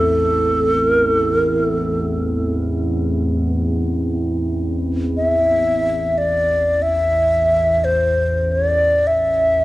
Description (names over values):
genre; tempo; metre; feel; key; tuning
world meditative, free-time meditation music; free time; none; none; A minor; A4 = 440 Hz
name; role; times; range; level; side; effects
breathy alto flute; melody; 0.0-9.6 s; A4 to E5; -16 LUFS; equal; cassette tape
glassy FM pad; drone; 0.0-9.6 s; A1 to E2; -22 LUFS; equal; ensemble chorus, built-in reverb, cassette tape
glass harmonica; texture; 0.0-5.8 s; A3 to E4; -24 LUFS; right 2 dB; cassette tape
room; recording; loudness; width
wet studio reverb, RT60 0.6 s; home recording on cassette; -16 LUFS; side -17 dB against mid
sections
0.0-9.6 A section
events
none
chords
none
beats
free time